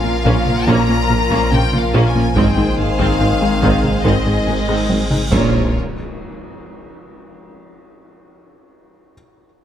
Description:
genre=cinematic, hybrid orchestral and electronic film score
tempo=71 BPM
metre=4/4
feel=straight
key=Bb minor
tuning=A4 = 440 Hz
part: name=rich chamber violin section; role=melody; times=0.0-5.8 s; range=Db5 to Bb5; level=-22 LUFS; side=left 6 dB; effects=none
part: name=clear symphonic violin section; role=second line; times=0.0-5.8 s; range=F4 to C5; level=-27 LUFS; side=left 1 dB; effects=none
part: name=rich symphonic viola section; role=accompaniment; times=0.0-5.8 s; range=Eb3 to Db4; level=-23 LUFS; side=right 1 dB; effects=none
part: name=clear trombone section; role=sustained chords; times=0.0-5.7 s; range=Bb2 to Bb3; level=-26 LUFS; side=right 3 dB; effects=none
part: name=ethereal airy pad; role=sustained chords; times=0.0-5.8 s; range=F3 to Bb4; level=-27 LUFS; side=right 1 dB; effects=none
part: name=warm French horn section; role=sustained chords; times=0.0-5.7 s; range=Bb3 to F4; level=-26 LUFS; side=left 3 dB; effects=none
part: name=tight sequenced synth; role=arpeggios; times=0.0-5.2 s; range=Ab3 to Bb4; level=-27 LUFS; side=left 2 dB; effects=none
part: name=plucky analog bass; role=riff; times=0.0-5.2 s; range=Ab2 to Bb3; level=-22 LUFS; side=left 2 dB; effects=none
part: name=punchy sub bass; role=bass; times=0.0-5.8 s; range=Ab1 to Bb1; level=-23 LUFS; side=equal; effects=none
part: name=rich symphonic cello section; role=bass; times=0.0-5.8 s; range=Ab2 to Bb2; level=-24 LUFS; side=right 3 dB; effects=none
part: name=bright grand piano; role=texture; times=0.0-2.4 s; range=Ab5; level=-40 LUFS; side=equal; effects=none
part: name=rich symphonic double bass section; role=bass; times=0.2-5.8 s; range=Ab1 to Bb1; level=-23 LUFS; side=right 3 dB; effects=none
part: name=warm tuba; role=bass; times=0.2-5.7 s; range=Ab1 to Bb1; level=-25 LUFS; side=right 3 dB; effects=none
part: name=solo taiko drums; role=drums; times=0.2-7.0 s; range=none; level=-23 LUFS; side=equal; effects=none
part: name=cymbal swell and impact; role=sound effects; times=4.5-8.7 s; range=none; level=-29 LUFS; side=equal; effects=none
room=moderate scoring stage reverb, RT60 1.6 s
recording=none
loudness=-13 LUFS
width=side -10 dB against mid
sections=0.0-5.7 A section; 5.7-9.1 B section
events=cymbal swell 4.5-5.7; drum fill 4.9-5.7; impact 5.7-9.1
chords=0.0 Bbm; 2.4 Ab; 5.3 Bbm; 5.7 N.C.

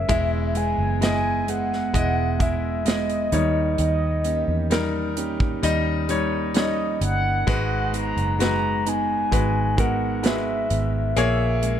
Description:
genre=pop ballad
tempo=65 BPM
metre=4/4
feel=straight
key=unclear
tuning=A4 = 442 Hz
part: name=mellow horn-like synth lead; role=melody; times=0.0-11.8 s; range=D#5 to A#5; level=-26 LUFS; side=equal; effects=chorus
part: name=clear concert grand piano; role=accompaniment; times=0.0-11.8 s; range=G#2 to E5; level=-26 LUFS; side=left 4 dB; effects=none
part: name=fingerpicked plugged-in steel-string acoustic guitar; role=arpeggios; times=0.0-11.8 s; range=E2 to G#4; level=-30 LUFS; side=right 10 dB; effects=none
part: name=vintage muted fingered electric bass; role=bass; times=0.0-11.8 s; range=E1 to E2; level=-26 LUFS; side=equal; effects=none
part: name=modern studio drum kit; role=drums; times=0.1-11.8 s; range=hi-hat, kick drum, snare drum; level=-25 LUFS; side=right 1 dB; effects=none
room=light reverb, small room ambience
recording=none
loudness=-20 LUFS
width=side -9 dB against mid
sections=0.0-11.8 A section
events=none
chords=0.1 Emaj7; 3.3 D#7; 7.5 G#m7; 11.2 A#m7b5

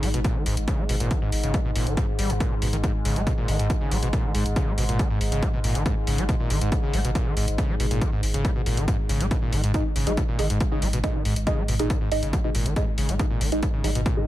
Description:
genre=driving peak-time techno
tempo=139 BPM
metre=4/4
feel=straight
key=G# minor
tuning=A4 = 440 Hz
part: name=overdriven acid bass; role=riff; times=0.0-14.3 s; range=G#2 to G#3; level=-29 LUFS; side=equal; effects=distortion, wide subtle chorus, sidechain pumping, ping-pong delay
part: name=saturated sub bass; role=bass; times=0.0-14.1 s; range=G#1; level=-26 LUFS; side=equal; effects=tube saturation, sidechain pumping, low-pass filter
part: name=analog drone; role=drone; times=0.0-14.3 s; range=G#2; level=-31 LUFS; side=equal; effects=lush chorus, sidechain pumping
part: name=electronic hi-hat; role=drums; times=0.0-14.1 s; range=none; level=-33 LUFS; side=left 1 dB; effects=none
part: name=electronic kick drum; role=drums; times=0.2-14.1 s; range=none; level=-25 LUFS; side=equal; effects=none
part: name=filtered dub chord stab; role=stabs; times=9.7-14.3 s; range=D#4 to D#5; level=-29 LUFS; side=right 1 dB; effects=phaser, analog chorus, sidechain pumping, ping-pong delay
room=light reverb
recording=none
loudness=-22 LUFS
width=side -14 dB against mid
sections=0.0-14.3 A section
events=none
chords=0.0 G#5

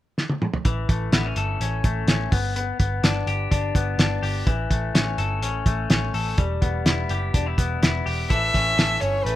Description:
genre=jangly indie pop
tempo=126 BPM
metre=4/4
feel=straight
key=A mixolydian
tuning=A4 = 440 Hz
part: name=cloth-damped thuddy drum kit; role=drums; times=0.2-9.4 s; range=hi-hat, kick drum, snare drum, toms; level=-22 LUFS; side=equal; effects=none
part: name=electric guitar through a small old amp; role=arpeggios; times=0.7-9.4 s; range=E3 to A4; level=-27 LUFS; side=left 5 dB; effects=analog delay
part: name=vintage muted picked electric bass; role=bass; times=0.7-9.4 s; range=E1 to A1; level=-26 LUFS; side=right 1 dB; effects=none
part: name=dark violin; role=melody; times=8.3-9.4 s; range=B4 to E5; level=-21 LUFS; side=right 1 dB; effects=none
room=small room reverb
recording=rough home demo mix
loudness=-20 LUFS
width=side -14 dB against mid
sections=0.7-8.3 A section; 8.3-9.4 B section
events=drum fill 0.2-0.7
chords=0.0 N.C.; 0.7 A; 2.3 G; 4.5 A; 6.4 Em; 8.3 A

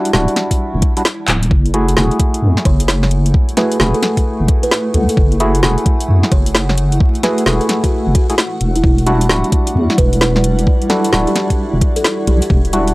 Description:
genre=UK garage, two-step garage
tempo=131 BPM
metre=4/4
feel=swing 64% on 16ths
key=F# phrygian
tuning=A4 = 440 Hz
part: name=percussive organ stab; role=stabs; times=0.0-12.9 s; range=G3 to G#4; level=-19 LUFS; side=equal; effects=chorus
part: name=granular cloud pad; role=texture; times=0.1-12.9 s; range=G3 to F#5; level=-23 LUFS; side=equal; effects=built-in reverb, sidechain pumping
part: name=deep soft wobble bass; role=bass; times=0.1-12.9 s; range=D1 to F#2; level=-14 LUFS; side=equal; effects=chorus
part: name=garage drum kit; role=drums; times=0.1-12.9 s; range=handclaps, hi-hat, snare drum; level=-17 LUFS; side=equal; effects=none
part: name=electronic kick drum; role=drums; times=0.5-12.6 s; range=none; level=-13 LUFS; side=equal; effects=overdrive
part: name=buzzing kalimba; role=melody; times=2.7-12.5 s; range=E4 to C#5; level=-22 LUFS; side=equal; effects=none
room=little or no reverb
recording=dry, gritty hardware recording, vinyl crackle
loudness=-12 LUFS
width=side -21 dB against mid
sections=0.0-12.9 A section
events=drum fill 1.3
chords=0.0 Em9; 1.5 F#m9; 8.6 Em9

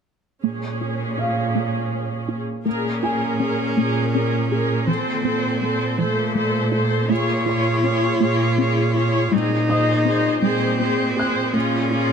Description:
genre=cinematic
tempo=54 BPM (dotted quarters)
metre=6/8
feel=straight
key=Bb minor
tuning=A4 = 435 Hz
part: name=rich symphonic viola section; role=accompaniment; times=0.4-12.1 s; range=C4 to Db5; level=-24 LUFS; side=equal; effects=none
part: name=resonant blip pluck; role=arpeggios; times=0.4-12.1 s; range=F3 to Ab4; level=-26 LUFS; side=equal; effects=chorus, phaser, ping-pong delay
part: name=rich symphonic cello section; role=bass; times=0.4-12.1 s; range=Bb2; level=-23 LUFS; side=right 2 dB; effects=none
part: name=warm concert grand piano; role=texture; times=1.2-12.1 s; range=Eb5 to Gb6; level=-30 LUFS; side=left 2 dB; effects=ping-pong delay
part: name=clear cello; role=melody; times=2.7-12.1 s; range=A3 to F4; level=-23 LUFS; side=left 1 dB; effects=ping-pong delay
room=light reverb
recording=close, detailed microphones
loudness=-18 LUFS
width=side -6 dB against mid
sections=0.4-2.7 A section; 2.7-12.1 B section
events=none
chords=0.4 Bbm7; 4.9 F/Bb; 7.1 Bbm7; 9.3 Ab/Bb; 11.5 Bbm7

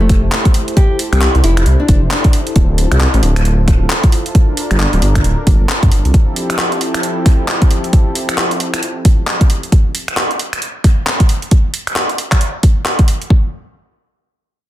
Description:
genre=UK garage, two-step garage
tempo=134 BPM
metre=4/4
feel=swing 60% on 16ths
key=F major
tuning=A4 = 440 Hz
part: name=nylon-string guitar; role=melody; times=0.0-2.4 s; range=A3 to G4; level=-21 LUFS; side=left 1 dB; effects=ping-pong delay
part: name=warm analog pad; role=sustained chords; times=0.0-9.7 s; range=F3 to C5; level=-22 LUFS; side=equal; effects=wide subtle chorus, sidechain pumping
part: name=dark detuned saw bass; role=bass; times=0.0-6.1 s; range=D1 to G2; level=-12 LUFS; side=equal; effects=sidechain pumping
part: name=electronic kick drum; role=drums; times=0.1-13.4 s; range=none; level=-10 LUFS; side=equal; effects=none
part: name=house drum kit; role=drums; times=0.1-13.3 s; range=finger snaps, handclaps, hi-hat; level=-18 LUFS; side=equal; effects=soft clipping on snare
room=digital ambience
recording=dense, heavily limited modern master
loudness=-11 LUFS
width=side -14 dB against mid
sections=0.0-13.3 A section; 13.3-14.7 B section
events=none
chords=0.0 Fmaj9; 2.6 Dm9; 4.3 Gm9; 6.1 Fmaj9; 9.7 N.C.

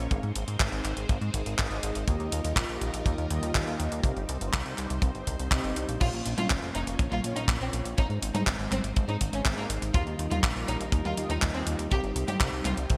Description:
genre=italo disco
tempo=122 BPM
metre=4/4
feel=straight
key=unclear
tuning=A4 = 440 Hz
part: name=string machine, full ensemble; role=sustained chords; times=0.0-13.0 s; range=G3 to Db5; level=-40 LUFS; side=equal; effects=phaser, ensemble chorus
part: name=mellow synth brass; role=stabs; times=0.0-12.0 s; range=Ab2 to F5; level=-39 LUFS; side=equal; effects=chorus, digital delay
part: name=chorused synth bass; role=bass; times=0.0-13.0 s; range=F1 to Ab2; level=-35 LUFS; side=equal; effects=tube saturation
part: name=clean 12-bit digital drum machine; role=drums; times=0.1-13.0 s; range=crash cymbal, handclaps, hi-hat, toms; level=-34 LUFS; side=equal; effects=gated reverb
part: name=kick drum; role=drums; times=0.1-13.0 s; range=none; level=-29 LUFS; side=equal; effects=none
part: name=clear symphonic violin section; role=melody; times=6.0-12.7 s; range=Bb3 to G4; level=-38 LUFS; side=equal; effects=delay
room=light reverb, small room ambience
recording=bright 1980s-style digital production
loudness=-29 LUFS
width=mono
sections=0.0-13.0 A section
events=none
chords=0.1 Ab; 2.1 Ebadd9; 4.0 Cm; 6.0 Bbm; 8.0 Ab; 9.9 Ebadd9; 11.9 Cm

